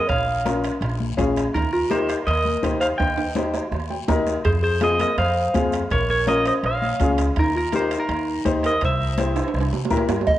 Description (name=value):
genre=latin, cumbia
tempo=165 BPM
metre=4/4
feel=straight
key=unclear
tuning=A4 = 443 Hz
part: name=clean electric guitar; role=melody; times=0.0-10.1 s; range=Bb4 to G5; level=-24 LUFS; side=right 1 dB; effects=spring reverb, slapback echo
part: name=soft struck synth lead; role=second line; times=0.0-10.4 s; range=Eb4 to Eb5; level=-25 LUFS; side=equal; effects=chorus
part: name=upright bass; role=bass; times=0.1-10.4 s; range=Bb1 to C3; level=-26 LUFS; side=equal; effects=none
part: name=bombo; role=percussion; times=0.1-10.4 s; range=none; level=-28 LUFS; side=right 2 dB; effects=none
part: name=congas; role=percussion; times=0.1-10.4 s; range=none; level=-31 LUFS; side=left 5 dB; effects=none
part: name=guiro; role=percussion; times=0.1-10.4 s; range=none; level=-42 LUFS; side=left 7 dB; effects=none
part: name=timbales and cowbell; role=percussion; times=0.1-10.4 s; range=none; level=-30 LUFS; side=right 7 dB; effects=none
part: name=bright upright piano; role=accompaniment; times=0.4-10.2 s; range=C4 to G5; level=-25 LUFS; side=left 3 dB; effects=none
room=moderate large studio reverb, RT60 1.0 s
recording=worn, warbling old tape, cassette tape, warbly pitch drift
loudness=-19 LUFS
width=side -13 dB against mid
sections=0.0-10.3 A section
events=drum fill 3.0-4.5, 9.4-10.3; upright piano fill 3.7-4.5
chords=0.1 Bbm; 1.5 Eb; 4.5 Fm; 5.9 Bbm; 7.4 Eb; 8.8 C7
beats=| 0.09 0.45 0.82 1.18 | 1.54 1.91 2.27 2.64 | 3.00 3.36 3.73 4.09 | 4.46 4.82 5.18 5.55 | 5.91 6.27 6.64 7.00 | 7.36 7.73 8.09 8.45 | 8.82 9.18 9.54 9.91 | 10.27